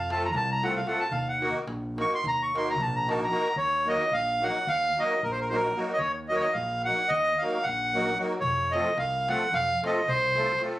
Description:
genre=balkan folk, Balkan wedding band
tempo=222 BPM (eighths)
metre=9/8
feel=straight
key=Eb dorian sharp4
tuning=A4 = 441 Hz
part: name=accordion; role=melody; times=0.0-10.6 s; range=Bb4 to Db6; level=-25 LUFS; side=equal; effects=none
part: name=overdriven fingered electric bass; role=bass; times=0.0-10.5 s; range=Bb1 to F2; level=-36 LUFS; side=equal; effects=none
part: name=musette accordion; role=accompaniment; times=0.1-10.8 s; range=F3 to Bb4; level=-30 LUFS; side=equal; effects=none
part: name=darbuka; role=percussion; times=0.1-3.5, 8.4-10.8 s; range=none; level=-38 LUFS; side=equal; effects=none
room=light reverb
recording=recorded on a phone in the room, studio ambience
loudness=-24 LUFS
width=side -15 dB against mid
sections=0.0-3.6 A section; 3.6-10.8 B section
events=accordion solo 0.0-3.6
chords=0.0 F; 1.1 Ebm; 8.4 F

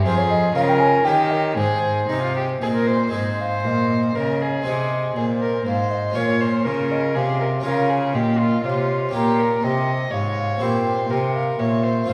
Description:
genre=classical, baroque-style sonata movement with continuo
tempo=121 BPM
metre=3/4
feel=rubato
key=Ab major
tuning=A4 = 441 Hz
part: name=rich violin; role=second line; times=0.0-12.1 s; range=Eb4 to Eb5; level=-26 LUFS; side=equal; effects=none
part: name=harpsichord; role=accompaniment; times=0.0-12.1 s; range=F2 to C5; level=-29 LUFS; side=equal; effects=none
part: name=rich cello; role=bass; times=0.0-12.1 s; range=F2 to Eb3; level=-24 LUFS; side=equal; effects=none
part: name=mellow baroque flute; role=melody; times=0.1-12.1 s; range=Bb4 to Bb5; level=-27 LUFS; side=equal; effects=none
room=wet recital hall reverb, RT60 1.6 s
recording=heard from further back in the room, vinyl crackle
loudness=-21 LUFS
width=mono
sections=0.0-3.1 A section; 3.1-12.1 B section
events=none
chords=0.1 Fm; 0.6 Bbm/Db; 1.1 Eb7; 1.6 Ab; 6.2 Bbm; 9.1 Gm7b5/Bb; 10.6 C7/Bb

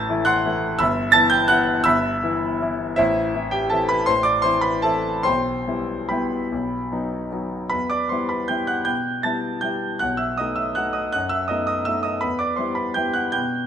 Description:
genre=classical, piano waltz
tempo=140-183 BPM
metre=3/4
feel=rubato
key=E minor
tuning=A4 = 441 Hz
part: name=warm grand piano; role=solo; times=0.0-13.7 s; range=G1 to A6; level=-19 LUFS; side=equal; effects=none
room=moderate recital hall reverb, RT60 1.4 s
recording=close, detailed microphones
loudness=-19 LUFS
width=side -8 dB against mid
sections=0.0-7.7 A section; 7.7-13.7 B section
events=none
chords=0.0 Am; 0.8 Em/G; 3.0 Am; 5.3 Em/B; 6.5 B; 7.7 Em; 10.0 B7; 12.2 Em

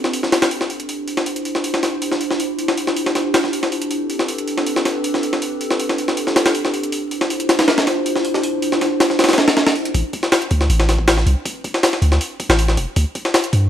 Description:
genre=drum and bass, jungle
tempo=159 BPM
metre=4/4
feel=straight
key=A minor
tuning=A4 = 439 Hz
part: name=warbly tape-like pad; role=sustained chords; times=0.0-13.7 s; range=C4 to C5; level=-23 LUFS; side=right 1 dB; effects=chorus, built-in reverb, vintage 12-bit sampler grit
part: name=jungle sampler-style drum kit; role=drums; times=0.0-13.6 s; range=hi-hat, kick drum, snare drum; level=-18 LUFS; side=left 1 dB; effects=overdrive, high-pass filter on kick, studio reverb, high-pass filter on hats, high-pass filter on snare
part: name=long sustained 808-style bass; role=bass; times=9.9-13.7 s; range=E1 to G2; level=-15 LUFS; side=equal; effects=none
room=light reverb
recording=vinyl crackle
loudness=-16 LUFS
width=side -10 dB against mid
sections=0.0-9.9 A section; 9.9-13.7 B section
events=build-up 9.9-13.7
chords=0.0 Am11; 0.9 Dm11; 3.9 Am11; 6.9 Dm11; 9.9 Am11; 13.0 Dm11 (rootless)

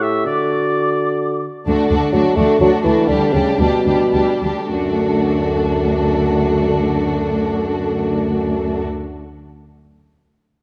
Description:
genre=classical, dramatic, fast romantic movement for symphony orchestra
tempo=101-129 BPM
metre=3/4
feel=rubato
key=D major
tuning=A4 = 441 Hz
part: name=small flute group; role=second line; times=0.0-1.4 s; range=C#6 to D6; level=-30 LUFS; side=equal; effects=none
part: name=warm clarinet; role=second line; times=0.0-1.4 s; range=F#4 to G4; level=-25 LUFS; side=equal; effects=none
part: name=warm oboe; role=second line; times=0.0-1.2 s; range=D5 to E5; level=-26 LUFS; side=equal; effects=none
part: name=dark bassoon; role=accompaniment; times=0.0-8.8 s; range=F#2 to A3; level=-21 LUFS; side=equal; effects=none
part: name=rich studio violin section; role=melody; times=1.7-8.9 s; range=F#4 to G4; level=-30 LUFS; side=equal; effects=none
part: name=warm symphonic violin section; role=second line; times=1.7-8.8 s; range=D4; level=-26 LUFS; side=equal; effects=none
part: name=warm symphonic viola section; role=accompaniment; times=1.7-8.8 s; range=G3 to A3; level=-24 LUFS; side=equal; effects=none
part: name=dark symphonic cello section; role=bass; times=1.7-8.8 s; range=D2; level=-24 LUFS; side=equal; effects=none
room=wet concert hall reverb, RT60 1.8 s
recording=none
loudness=-17 LUFS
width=mono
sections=0.0-1.7 A section; 1.7-4.7 B section; 4.7-8.1 C section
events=slowing down 1.0-4.7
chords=0.3 D; 3.1 G/D; 4.7 D

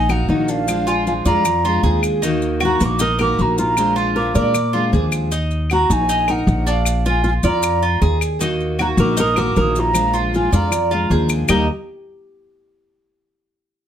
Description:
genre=latin, Cuban son and guajira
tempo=155 BPM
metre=4/4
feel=straight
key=Eb harmonic minor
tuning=A4 = 440 Hz
part: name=breathy mellow jazz flute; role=melody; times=0.0-11.7 s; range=F5 to Eb6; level=-21 LUFS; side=right 2 dB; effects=none
part: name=flamenco guitar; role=second line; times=0.0-11.7 s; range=D4 to Bb4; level=-23 LUFS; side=left 1 dB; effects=none
part: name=Cuban tres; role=arpeggios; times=0.0-11.7 s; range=D4 to Eb5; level=-23 LUFS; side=right 3 dB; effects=none
part: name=upright bass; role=bass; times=0.0-11.7 s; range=Bb1 to Bb2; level=-20 LUFS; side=equal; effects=none
part: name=picked steel-string acoustic guitar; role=accompaniment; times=0.1-5.3, 8.4-11.7 s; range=Eb3 to G4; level=-23 LUFS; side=left 2 dB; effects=none
part: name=claves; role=percussion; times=0.1-11.6 s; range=none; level=-24 LUFS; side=left 7 dB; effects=none
part: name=maracas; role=percussion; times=0.1-11.6 s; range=none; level=-30 LUFS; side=left 5 dB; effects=none
room=light reverb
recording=close, detailed microphones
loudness=-15 LUFS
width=side -9 dB against mid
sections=0.0-5.3 A section; 5.3-11.5 B section; 11.5-13.0 C section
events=none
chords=0.0 Ebm; 0.7 Bb7; 2.2 Ebm; 3.8 Bb7; 5.3 Ebm; 6.9 Bb7; 8.4 Ebm; 9.9 Bb7; 11.5 Eb

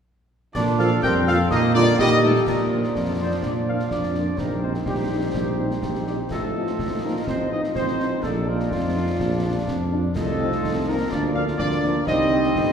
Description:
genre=military-style march for wind band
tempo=125 BPM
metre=2/4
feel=straight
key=Bb major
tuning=A4 = 440 Hz
part: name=dark trumpet section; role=melody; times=0.5-12.7 s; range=F4 to G5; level=-27 LUFS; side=equal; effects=none
part: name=mellow hollow piccolo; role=second line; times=0.5-2.4 s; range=D6 to G6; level=-29 LUFS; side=left 3 dB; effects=none
part: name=clear trombone section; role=sustained chords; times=0.5-12.7 s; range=Eb3 to Eb4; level=-30 LUFS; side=right 2 dB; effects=none
part: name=dark tuba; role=bass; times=0.5-12.7 s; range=G1 to Bb2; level=-25 LUFS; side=right 1 dB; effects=none
part: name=mellow euphonium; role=second line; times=0.6-12.7 s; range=D3 to F4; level=-28 LUFS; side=right 2 dB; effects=none
part: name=warm woodwind section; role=second line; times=0.6-12.7 s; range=Eb4 to Eb5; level=-28 LUFS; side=left 2 dB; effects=none
part: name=concert snare drum, clash cymbals and concert bass drum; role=drums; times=0.6-12.7 s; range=none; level=-31 LUFS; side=left 1 dB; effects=none
part: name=mellow French horn section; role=accompaniment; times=0.8-12.4 s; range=F3 to G4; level=-31 LUFS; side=left 2 dB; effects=none
room=wet church reverb, RT60 3.4 s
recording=recorded in a church or concert hall, faint mains hum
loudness=-20 LUFS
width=side -7 dB against mid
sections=0.6-2.5 A section; 2.5-12.7 B section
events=none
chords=0.6 Bb; 1.5 Eb/Bb; 2.5 Bb; 4.4 Cm7/Bb; 6.3 F7/A; 8.2 Bb; 10.2 F7/C; 11.1 Bb/D; 12.1 Cm

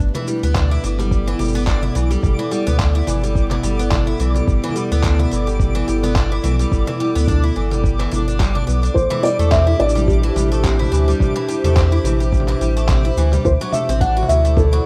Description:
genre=folktronica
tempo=107 BPM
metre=4/4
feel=swing 56% on 16ths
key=G major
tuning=A4 = 440 Hz
part: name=warbly tape-like pad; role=sustained chords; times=0.0-14.9 s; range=B3 to F#5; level=-27 LUFS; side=equal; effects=chorus, built-in reverb
part: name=warm sub bass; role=bass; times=0.0-14.8 s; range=G1 to E2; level=-20 LUFS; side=equal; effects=none
part: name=lo-fi sampler-style drum kit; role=drums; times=0.0-14.7 s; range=handclaps, shaker, toms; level=-28 LUFS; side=equal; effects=overdrive
part: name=twinkling granular texture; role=texture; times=0.7-14.9 s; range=D6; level=-36 LUFS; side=equal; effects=built-in reverb
part: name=picked twelve-string acoustic guitar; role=arpeggios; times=0.1-14.8 s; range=E3 to F#4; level=-27 LUFS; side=equal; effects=digital delay
part: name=electronic kick drum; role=drums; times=0.6-14.7 s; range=none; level=-21 LUFS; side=equal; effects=overdrive
part: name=felt-muted upright piano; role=melody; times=8.9-14.9 s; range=G4 to F#5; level=-21 LUFS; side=equal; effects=none
room=little or no reverb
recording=rough home demo mix, vinyl crackle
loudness=-17 LUFS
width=mono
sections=0.0-14.9 A section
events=none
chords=0.0 G6; 9.0 Am7; 13.4 D7

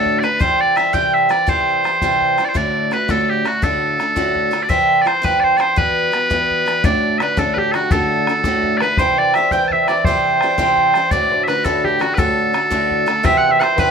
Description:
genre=celtic folk, Celtic jig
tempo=112 BPM (dotted quarters)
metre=6/8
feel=straight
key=unclear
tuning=A4 = 439 Hz
part: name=loud bright bagpipes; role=melody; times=0.0-13.9 s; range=F#4 to A5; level=-17 LUFS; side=equal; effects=none
part: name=picked acoustic archtop guitar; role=accompaniment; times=0.0-13.9 s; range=D2 to G4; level=-18 LUFS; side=right 1 dB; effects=none
part: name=bodhran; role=percussion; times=0.1-13.9 s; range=none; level=-22 LUFS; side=left 2 dB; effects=none
part: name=concert harp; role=second line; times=6.8-13.9 s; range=F#4 to G5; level=-24 LUFS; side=right 2 dB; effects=none
room=moderate studio reverb, RT60 0.6 s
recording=minimal, uncompressed stereo recording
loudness=-14 LUFS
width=side -6 dB against mid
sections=0.0-6.8 A section; 6.8-13.9 A section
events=none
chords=0.4 C; 2.6 D; 4.7 C; 5.8 Emadd9; 6.8 D; 9.0 C; 11.1 D; 13.2 C

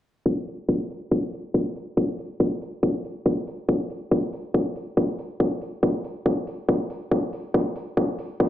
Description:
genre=psychedelic trance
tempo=140 BPM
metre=4/4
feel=straight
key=none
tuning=none
part: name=electronic kick drum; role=drums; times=0.3-8.5 s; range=none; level=-23 LUFS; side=equal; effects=high-pass filter on kick
part: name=electronic hi-hat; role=drums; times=0.5-8.3 s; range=none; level=-48 LUFS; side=equal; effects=low-pass filter on hats
room=digital ambience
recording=played on a big sound system in a bare room, stone room reverb, low-pass filter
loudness=-23 LUFS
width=side -12 dB against mid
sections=0.3-8.5 A section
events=filter sweep on drum 0.3-8.5; filter sweep 0.3-8.5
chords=none

